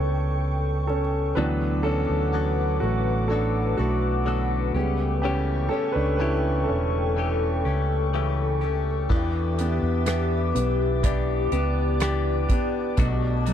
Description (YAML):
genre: pop ballad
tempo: 62 BPM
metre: 4/4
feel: straight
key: unclear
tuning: A4 = 440 Hz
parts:
  - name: clear concert grand piano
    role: accompaniment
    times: 0.0-13.5 s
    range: B2 to D5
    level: -27 LUFS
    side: right 1 dB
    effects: none
  - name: glassy FM pad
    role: sustained chords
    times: 0.0-13.5 s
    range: G4 to D6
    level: -29 LUFS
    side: left 3 dB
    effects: ensemble chorus, built-in reverb
  - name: fingered electric bass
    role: bass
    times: 0.0-13.5 s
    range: E1 to E2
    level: -25 LUFS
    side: right 1 dB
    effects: none
  - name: direct-recorded clean electric guitar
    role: arpeggios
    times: 1.4-13.5 s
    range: B2 to A4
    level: -32 LUFS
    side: left 9 dB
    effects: phaser
  - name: soft-mallet drum kit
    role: drums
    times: 9.1-13.5 s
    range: crash cymbal, hi-hat, kick drum, rim click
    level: -25 LUFS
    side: right 1 dB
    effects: none
room: little or no reverb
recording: dry, close 1970s-style studio recording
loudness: -22 LUFS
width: side -9 dB against mid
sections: 0.0-9.1 A section; 9.1-13.5 B section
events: grand piano solo 0.0-9.1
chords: 0.0 A7; 1.4 D6; 4.8 A7; 9.1 Em7; 13.0 Bm7